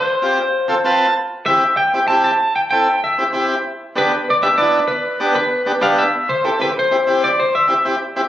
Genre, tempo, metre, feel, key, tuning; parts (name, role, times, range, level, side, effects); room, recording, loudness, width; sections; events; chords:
latin; 193 BPM; 4/4; straight; C major; A4 = 443 Hz
electric guitar at the edge of break-up; melody; 0.0-7.8 s; A4 to A5; -16 LUFS; equal; spring reverb, slapback echo
combo organ; accompaniment; 0.2-8.2 s; B3 to A5; -18 LUFS; equal; spring reverb
light reverb; recorded on a phone in the room, club reverb; -14 LUFS; side -12 dB against mid
0.0-6.1 A section; 6.1-8.3 B section
transistor combo organ fill 0.7-1.2
0.0 F; 1.2 C; 3.6 G; 6.1 C